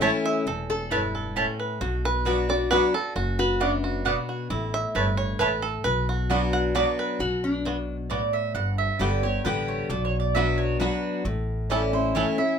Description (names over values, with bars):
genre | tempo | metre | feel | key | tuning
bluegrass | 133 BPM | 3/4 | straight | B minor | A4 = 436 Hz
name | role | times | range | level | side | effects
bluegrass banjo | melody | 0.0-12.3 s | B3 to F#5 | -28 LUFS | right 3 dB | none
picked steel-string acoustic guitar | accompaniment | 0.0-12.6 s | E2 to G4 | -27 LUFS | left 3 dB | none
mandolin | stabs | 0.0-12.6 s | A3 to A5 | -27 LUFS | right 5 dB | none
upright bass | bass | 0.0-12.2 s | E1 to B1 | -30 LUFS | equal | none
lap resonator guitar | second line | 0.7-4.5, 7.2-8.0 s | D4 to A4 | -29 LUFS | left 3 dB | none
room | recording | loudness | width
moderate studio ambience, RT60 0.5 s | minimal, uncompressed stereo recording | -23 LUFS | side -7 dB against mid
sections
0.0-7.2 A section; 7.2-12.6 A section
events
five-string banjo solo 0.0-7.2; mandolin solo 7.2-12.6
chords
0.0 A; 1.8 Bm; 4.5 A; 5.9 Bm; 8.6 G; 9.9 Bm; 11.3 A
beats
0.01 | 0.46 0.91 1.36 | 1.81 2.26 2.71 | 3.16 3.61 4.06 | 4.51 4.96 5.40 | 5.85 6.30 6.75 | 7.20 7.65 8.10 | 8.55 9.00 9.45 | 9.90 10.35 10.80 | 11.25 11.70 12.15